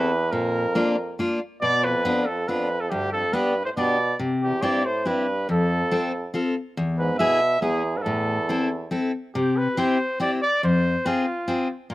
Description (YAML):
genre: alpine folk, alpine dance band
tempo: 140 BPM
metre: 3/4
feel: straight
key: A minor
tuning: A4 = 438 Hz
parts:
  - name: warm trumpet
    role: melody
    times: 0.0-11.9 s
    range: F4 to E5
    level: -24 LUFS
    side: equal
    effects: slapback echo
  - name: clear euphonium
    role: second line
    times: 0.0-8.9 s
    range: D2 to B2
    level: -28 LUFS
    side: right 3 dB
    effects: slapback echo
  - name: picked steel-string acoustic guitar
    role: accompaniment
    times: 0.0-11.9 s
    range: E2 to A4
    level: -24 LUFS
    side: left 2 dB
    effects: none
room: little or no reverb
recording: recorded outdoors, with no room sound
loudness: -21 LUFS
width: side -17 dB against mid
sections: 0.0-9.3 A section; 9.3-11.9 B section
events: none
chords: 0.3 Bb; 1.6 Bdim; 2.9 G; 4.2 C; 5.5 F; 6.8 E; 8.1 Am; 9.3 C; 10.6 Fm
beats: | 0.33 0.76 1.19 | 1.62 2.05 2.48 | 2.90 3.33 3.77 | 4.20 4.63 5.06 | 5.49 5.92 6.34 | 6.77 7.20 7.62 | 8.05 8.48 8.91 | 9.34 9.77 10.20 | 10.62 11.05 11.48 | 11.90